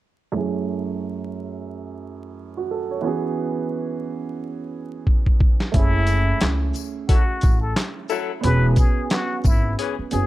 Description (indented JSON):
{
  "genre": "hip hop, boom-bap hip-hop",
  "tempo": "89 BPM",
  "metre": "4/4",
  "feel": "swing 58% on 16ths",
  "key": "F# minor",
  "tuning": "A4 = 441 Hz",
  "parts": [
    { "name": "dark baby grand piano", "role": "accompaniment", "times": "0.3-10.3 s", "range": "F#2 to C#5", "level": "-27 LUFS", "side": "right 6 dB", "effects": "cassette tape, high-pass filter, low-pass filter" },
    { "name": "boom bap sampler-style drum kit", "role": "drums", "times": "5.1-10.3 s", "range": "handclaps, hi-hat, kick drum, shaker, snare drum", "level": "-18 LUFS", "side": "equal", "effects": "none" },
    { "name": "upright bass", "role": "bass", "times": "5.7-10.3 s", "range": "E1 to C#2", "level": "-21 LUFS", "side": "equal", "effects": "none" },
    { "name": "trumpet with plunger mute", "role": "melody", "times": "5.8-10.3 s", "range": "E4 to B4", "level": "-26 LUFS", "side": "left 3 dB", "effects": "high-pass filter, low-pass filter, slapback echo" },
    { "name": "tambourine", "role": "percussion", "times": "6.1-10.3 s", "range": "none", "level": "-40 LUFS", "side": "left 16 dB", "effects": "none" },
    { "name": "warm saxophone section", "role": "stabs", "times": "7.1-9.9 s", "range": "E3 to A4", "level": "-26 LUFS", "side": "left 10 dB", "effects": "high-pass filter, low-pass filter, slapback echo" }
  ],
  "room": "little or no reverb",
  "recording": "vinyl crackle",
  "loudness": "-19 LUFS",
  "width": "side -15 dB against mid",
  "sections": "0.3-5.7 A section; 5.7-10.3 B section",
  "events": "filter sweep on grand piano 0.3-5.7; drum fill 5.1-5.7",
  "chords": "0.3 F#m7; 3.0 E6; 5.7 F#m7; 8.4 E6"
}